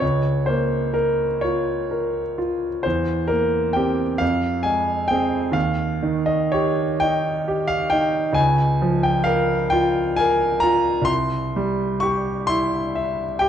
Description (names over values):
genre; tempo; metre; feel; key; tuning
classical, romantic nocturne for solo piano; 43 BPM (dotted quarters); 6/8; uneven beats, rubato; unclear; A4 = 440 Hz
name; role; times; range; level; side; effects
bright grand piano; solo; 0.0-13.5 s; C2 to Db6; -19 LUFS; equal; none
room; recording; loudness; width
moderate recital hall reverb, RT60 1.7 s; dark, warm production, nothing above 10.4 kHz; -19 LUFS; side -9 dB against mid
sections
0.0-13.5 A section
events
none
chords
0.0 Bbm/Db; 2.9 C7/E; 4.2 Fm; 5.6 Eb9; 8.4 Bbm/Db; 11.1 C